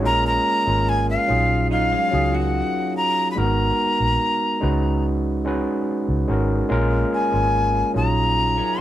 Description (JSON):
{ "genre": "soul", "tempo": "72 BPM", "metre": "4/4", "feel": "straight", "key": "unclear", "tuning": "A4 = 441 Hz", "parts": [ { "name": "overdriven tine electric piano", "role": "accompaniment", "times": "0.0-8.8 s", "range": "F#3 to B4", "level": "-23 LUFS", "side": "equal", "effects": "none" }, { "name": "vintage muted fingered electric bass", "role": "bass", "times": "0.0-8.6 s", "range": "G#1 to C#2", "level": "-22 LUFS", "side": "equal", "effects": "none" }, { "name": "breathy bright jazz flute", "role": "melody", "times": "0.1-8.8 s", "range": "E#5 to B5", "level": "-21 LUFS", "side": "left 1 dB", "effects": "none" }, { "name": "electric guitar through a small old amp", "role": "riff", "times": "1.7-3.3, 8.6-8.8 s", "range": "F#3 to A#4", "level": "-29 LUFS", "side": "right 3 dB", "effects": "none" } ], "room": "light reverb", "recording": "band playing live in one room", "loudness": "-18 LUFS", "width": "side -13 dB against mid", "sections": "0.0-8.8 A section", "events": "none", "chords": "0.0 A#m7; 1.3 D#m11/A#; 3.4 G#m9; 4.6 C#9sus4; 6.7 A#m7; 7.9 D#m11/A#", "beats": "| 0.04 0.87 1.71 2.54 | 3.37 4.20 5.04 5.87 | 6.70 7.53 8.36" }